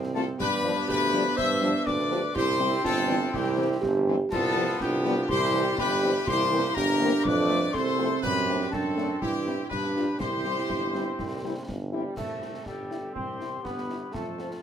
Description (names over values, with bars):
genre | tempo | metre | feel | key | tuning
military-style march for wind band | 122 BPM | 2/4 | straight | C major | A4 = 440 Hz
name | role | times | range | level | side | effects
dark euphonium | second line | 0.0-11.9 s | B3 to G4 | -30 LUFS | right 4 dB | none
bright trombone section | sustained chords | 0.0-14.6 s | C3 to D4 | -35 LUFS | right 1 dB | none
clear tuba | bass | 0.0-14.6 s | G1 to G2 | -31 LUFS | right 2 dB | none
concert snare drum, clash cymbals and concert bass drum | drums | 0.0-14.6 s | none | -38 LUFS | left 1 dB | none
warm trumpet section | melody | 0.1-14.6 s | G4 to E5 | -32 LUFS | left 3 dB | none
clear woodwind section | second line | 0.1-14.6 s | D4 to C5 | -33 LUFS | left 1 dB | none
mellow French horn section | accompaniment | 0.1-14.5 s | E3 to C5 | -32 LUFS | left 3 dB | none
mellow hollow piccolo | second line | 0.2-14.6 s | G5 to E6 | -33 LUFS | left 4 dB | none
room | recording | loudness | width
moderate studio reverb, RT60 0.5 s | none | -24 LUFS | side -9 dB against mid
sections
0.0-12.2 A section; 12.2-14.6 A section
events
none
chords
0.4 G7; 2.4 C; 4.3 G7/C; 5.3 C; 6.3 C7; 7.3 F; 8.2 D7/F#; 9.2 C/G; 9.7 G7; 10.2 C